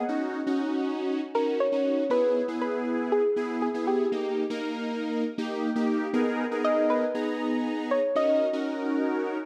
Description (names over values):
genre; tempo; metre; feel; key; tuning
pop; 119 BPM; 4/4; straight; G# minor; A4 = 440 Hz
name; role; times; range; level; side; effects
soft round pluck; melody; 0.0-8.6 s; G4 to F#5; -29 LUFS; equal; chorus, tape echo
big bright polysynth; accompaniment; 0.0-9.4 s; A#3 to A#5; -30 LUFS; equal; chorus
room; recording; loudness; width
moderate lush hall reverb, RT60 2.7 s; none; -27 LUFS; mono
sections
0.0-6.1 A section; 6.1-9.5 B section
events
none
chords
0.1 D#m7; 2.1 E; 4.1 D#; 6.1 G#madd9; 8.2 D#m7